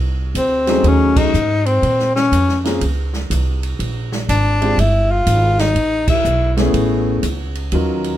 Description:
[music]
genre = jazz, small-group swing and bop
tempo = 122 BPM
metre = 4/4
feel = swing 66% on 8ths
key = unclear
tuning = A4 = 440 Hz
[part]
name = upright bass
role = bass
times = 0.0-8.2 s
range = G1 to Bb2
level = -18 LUFS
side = right 1 dB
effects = none
[part]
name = open jazz drum kit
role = drums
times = 0.3-8.1 s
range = crash cymbal, hi-hat, kick drum, ride cymbal, snare drum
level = -24 LUFS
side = right 1 dB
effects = none
[part]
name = breathy tenor saxophone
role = melody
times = 0.4-6.5 s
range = C4 to F4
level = -16 LUFS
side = left 1 dB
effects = none
[part]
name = warm concert grand piano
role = accompaniment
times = 0.7-8.2 s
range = Gb3 to Bb4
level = -18 LUFS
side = left 1 dB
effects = none
[sound]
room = moderate club reverb, RT60 0.7 s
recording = minimal, uncompressed stereo recording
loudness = -14 LUFS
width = side -12 dB against mid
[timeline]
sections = 0.0-8.2 A section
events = band accent 1.1, 6.0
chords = 0.0 Cmadd9; 0.8 Gbm69/Eb; 1.8 Bbmadd9; 3.8 Bb13; 5.8 Amaj7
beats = 0.36 0.85 1.34 | 1.83 2.32 2.81 3.30 | 3.79 4.28 4.78 5.27 | 5.76 6.25 6.74 7.23 | 7.72

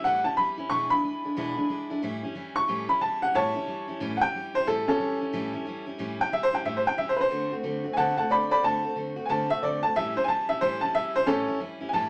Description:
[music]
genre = rock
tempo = 182 BPM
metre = 4/4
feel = swing 62% on 8ths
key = A mixolydian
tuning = A4 = 438 Hz
[part]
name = clear upright piano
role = melody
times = 0.0-12.1 s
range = C#4 to C#6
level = -27 LUFS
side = equal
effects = none
[part]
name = picked steel-string acoustic guitar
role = accompaniment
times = 0.0-12.1 s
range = E2 to F#4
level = -34 LUFS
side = equal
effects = none
[sound]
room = wet studio ambience, RT60 0.5 s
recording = nothing above 10.3 kHz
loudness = -27 LUFS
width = mono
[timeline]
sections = 0.0-2.0 A section; 2.0-12.1 B section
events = upright piano solo 2.0-12.1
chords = 0.0 A7; 0.7 E7; 2.0 A7; 7.3 D7; 10.0 A7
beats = 0.04 0.37 | 0.70 1.03 1.36 1.69 | 2.02 2.35 2.68 3.02 | 3.35 3.68 4.01 4.34 | 4.67 5.00 5.33 5.66 | 5.99 6.32 6.65 6.98 | 7.31 7.64 7.97 8.30 | 8.63 8.96 9.29 9.62 | 9.95 10.28 10.61 10.94 | 11.27 11.60 11.93

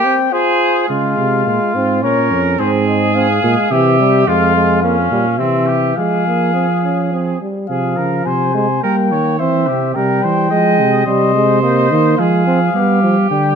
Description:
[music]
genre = classical, imitative canzona for brass ensemble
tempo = 107 BPM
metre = 3/4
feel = straight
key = F minor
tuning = A4 = 440 Hz
[part]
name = mellow cornet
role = melody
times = 0.0-13.6 s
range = C5 to Ab5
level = -18 LUFS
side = left 11 dB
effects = none
[part]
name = warm trumpet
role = second line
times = 0.0-13.6 s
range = C4 to Eb5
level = -19 LUFS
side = right 5 dB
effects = none
[part]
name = mellow trombone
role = accompaniment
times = 0.0-13.6 s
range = E3 to F4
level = -19 LUFS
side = right 2 dB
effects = none
[part]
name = warm tuba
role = bass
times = 0.9-13.6 s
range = F2 to G3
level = -16 LUFS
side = right 3 dB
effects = none
[sound]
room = light reverb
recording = close, detailed microphones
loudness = -12 LUFS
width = side -7 dB against mid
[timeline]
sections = 0.9-7.7 A section; 7.7-13.6 B section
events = none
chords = 0.3 Fm; 0.9 Db; 2.0 Bbm; 2.6 Fm/Ab; 3.7 C; 4.3 Fm; 4.8 Gdim; 5.4 C; 6.0 Fm; 7.7 Fm/C; 8.8 Gdim; 9.4 C; 10.5 Fm; 11.1 Cm; 12.2 Fm; 12.8 G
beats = 0.33 | 0.89 1.46 2.03 | 2.59 3.15 3.71 | 4.27 4.83 5.40 | 5.97 6.54 7.12 | 7.69 8.26 8.83 | 9.40 9.96 10.52 | 11.07 11.63 12.19 | 12.75 13.31

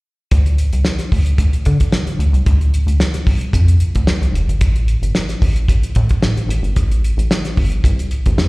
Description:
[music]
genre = funk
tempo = 112 BPM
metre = 4/4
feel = straight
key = D minor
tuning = A4 = 439 Hz
[part]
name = rubbery square bass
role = bass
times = 0.3-8.5 s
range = F1 to D3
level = -14 LUFS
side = equal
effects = none
[part]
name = cloth-damped thuddy drum kit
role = drums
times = 0.3-8.5 s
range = hi-hat, kick drum, snare drum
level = -17 LUFS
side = equal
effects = none
[sound]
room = little or no reverb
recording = live gig heard through the venue's PA, recital hall reverb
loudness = -13 LUFS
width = side -24 dB against mid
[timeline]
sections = 0.3-8.5 A section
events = none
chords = none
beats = | 0.31 0.85 1.39 1.92 | 2.46 3.00 3.54 4.07 | 4.61 5.15 5.69 6.22 | 6.76 7.30 7.84 8.38

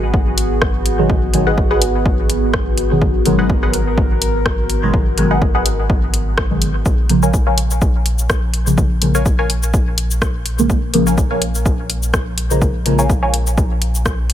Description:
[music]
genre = dub techno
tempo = 125 BPM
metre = 4/4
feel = swing 55% on 16ths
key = Bb phrygian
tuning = A4 = 440 Hz
[part]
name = warbly tape-like pad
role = sustained chords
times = 0.0-6.8 s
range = Cb4 to Bb4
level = -22 LUFS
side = equal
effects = chorus, built-in reverb, phaser, sidechain pumping
[part]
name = warm sub bass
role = bass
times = 0.0-14.3 s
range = Ab1 to Bb1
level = -20 LUFS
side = equal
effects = sidechain pumping
[part]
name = electronic kick drum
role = drums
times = 0.1-14.2 s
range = none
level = -18 LUFS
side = equal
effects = none
[part]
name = deep house drum kit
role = drums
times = 0.4-14.3 s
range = hi-hat, rim click, shaker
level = -21 LUFS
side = left 1 dB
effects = dub echo
[part]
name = deep mellow chord stab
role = stabs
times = 1.0-13.0 s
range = Cb3 to Bb3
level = -20 LUFS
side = equal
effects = chorus, phaser, sidechain pumping, dub echo
[part]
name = filtered dub chord stab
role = riff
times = 1.5-13.4 s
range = Ab4 to Ab5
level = -24 LUFS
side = left 1 dB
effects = phaser, sidechain pumping, dub echo
[sound]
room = little or no reverb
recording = none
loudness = -14 LUFS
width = side -11 dB against mid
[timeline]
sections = 0.0-6.9 A section; 6.9-14.3 A section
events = none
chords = 0.0 Abm7; 6.9 Bbm7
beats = 0.14 0.62 | 1.10 1.58 2.06 2.54 | 3.02 3.50 3.98 4.46 | 4.94 5.42 5.90 6.38 | 6.86 7.34 7.82 8.30 | 8.78 9.26 9.74 10.22 | 10.70 11.18 11.66 12.14 | 12.62 13.10 13.58 14.06

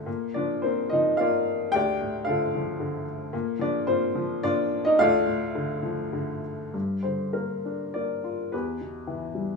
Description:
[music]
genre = classical, lyrical solo piano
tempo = 98-114 BPM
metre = 3/4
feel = rubato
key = unclear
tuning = A4 = 439 Hz
[part]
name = warm upright piano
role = solo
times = 0.0-9.6 s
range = D2 to G5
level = -24 LUFS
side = left 1 dB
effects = none
[sound]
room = light reverb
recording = studio ambience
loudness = -24 LUFS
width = side -4 dB against mid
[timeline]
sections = 0.0-6.7 A section; 6.7-9.6 B section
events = none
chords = 0.1 Bbadd9; 1.7 Dm; 3.3 Bbadd9; 5.0 Dm; 6.7 Gm7; 8.5 Em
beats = | 0.07 0.65 1.21 | 1.75 2.28 2.80 | 3.33 3.88 4.44 | 4.99 5.55 6.14 | 6.75 7.35 7.95 | 8.53 9.10

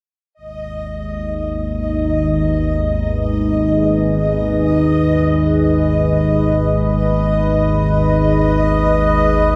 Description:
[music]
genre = dark ambient drone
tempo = free time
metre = none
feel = none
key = G# minor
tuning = A4 = 439 Hz
[part]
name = bubbling stepped-filter texture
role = texture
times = 0.3-9.6 s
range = D#5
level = -23 LUFS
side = equal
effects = chorus, built-in reverb
[part]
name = deep dark ambient pad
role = sustained chords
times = 1.0-9.6 s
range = G#3 to B4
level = -21 LUFS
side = equal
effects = chorus, built-in reverb
[part]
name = analog drone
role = drone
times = 0.6-9.6 s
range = G#1 to D#2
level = -20 LUFS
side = equal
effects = chorus
[sound]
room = wet cathedral reverb, RT60 5.2 s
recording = none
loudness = -16 LUFS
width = mono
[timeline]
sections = 0.4-9.6 A section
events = none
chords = 0.4 G#m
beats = free time

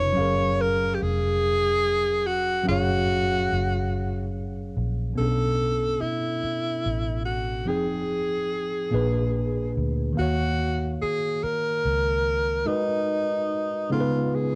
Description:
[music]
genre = slow six-eight R&B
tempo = 48 BPM (dotted quarters)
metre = 6/8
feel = straight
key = F# major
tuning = A4 = 440 Hz
[part]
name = breathy tenor saxophone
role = melody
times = 0.0-14.6 s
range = D#4 to C#5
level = -28 LUFS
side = equal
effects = cassette tape
[part]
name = tine electric piano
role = accompaniment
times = 0.0-14.6 s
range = A#2 to G5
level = -30 LUFS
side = equal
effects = overdrive
[part]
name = vintage muted fingered electric bass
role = bass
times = 0.0-12.6 s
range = E#1 to D#2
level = -31 LUFS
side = equal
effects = none
[sound]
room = moderate booth ambience, RT60 0.2 s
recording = home recording on cassette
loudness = -25 LUFS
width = mono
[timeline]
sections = 0.0-5.2 A section; 5.2-14.6 B section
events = none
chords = 0.2 F#maj7; 5.2 Bm9; 7.7 Fm7; 8.9 A#7b9; 10.2 D#m7; 12.7 G#m9; 13.9 C#9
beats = | 0.16 1.41 | 2.66 3.91 | 5.16 6.41 | 7.66 8.91 | 10.16 11.41 | 12.66 13.91

